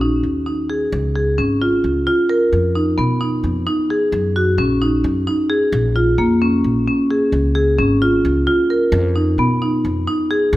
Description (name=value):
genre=contemporary instrumental, chamber music in an uneven meter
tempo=262 BPM (eighths)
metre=7/8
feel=straight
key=unclear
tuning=A4 = 440 Hz
part: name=marimba with medium hard mallets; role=arpeggios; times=0.0-10.5 s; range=Bb3 to Bb4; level=-16 LUFS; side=equal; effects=none
part: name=upright bass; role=bass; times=0.0-10.6 s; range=Ab1 to Cb3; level=-20 LUFS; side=equal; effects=none
room=wet recital hall reverb, RT60 1.7 s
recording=none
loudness=-15 LUFS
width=side -16 dB against mid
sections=0.9-10.6 A section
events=none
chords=0.0 Eb5; 0.9 Db; 2.5 Fm7b5; 4.1 Ebm7; 5.7 Bbm7; 7.3 Db; 8.9 Fm7b5